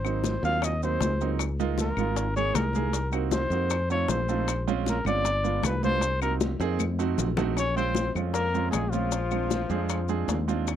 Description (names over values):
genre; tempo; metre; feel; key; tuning
Afro-Cuban jazz; 155 BPM; 4/4; straight; Bb minor; A4 = 442 Hz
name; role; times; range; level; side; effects
breathy trumpet; melody; 0.0-10.5 s; F4 to F5; -29 LUFS; left 1 dB; none
warm grand piano; accompaniment; 0.0-10.7 s; Gb3 to Ab4; -31 LUFS; right 12 dB; none
fingered electric bass; bass; 0.0-10.8 s; G1 to F2; -29 LUFS; left 1 dB; none
bongos; percussion; 0.0-10.8 s; none; -34 LUFS; left 7 dB; none
claves; percussion; 0.0-10.8 s; none; -39 LUFS; left 20 dB; none
congas; percussion; 0.1-10.8 s; none; -34 LUFS; left 4 dB; none
maracas; percussion; 0.1-10.8 s; none; -38 LUFS; left 22 dB; none
breathy tenor saxophone; second line; 7.6-10.5 s; F3 to Db4; -35 LUFS; left 12 dB; none
room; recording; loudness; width
little or no reverb; dry, close 1970s-style studio recording; -24 LUFS; side -10 dB against mid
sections
0.0-7.6 A section; 7.6-10.8 B section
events
trumpet solo 0.0-7.6; drum fill 6.6-7.6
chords
0.0 Ab7; 1.4 Db69; 2.9 Cm7b5; 3.7 F7; 4.5 Bbm7; 5.3 G7b9; 6.0 Cm7b5; 6.8 F7b9; 7.6 Bbm7; 9.1 Bb7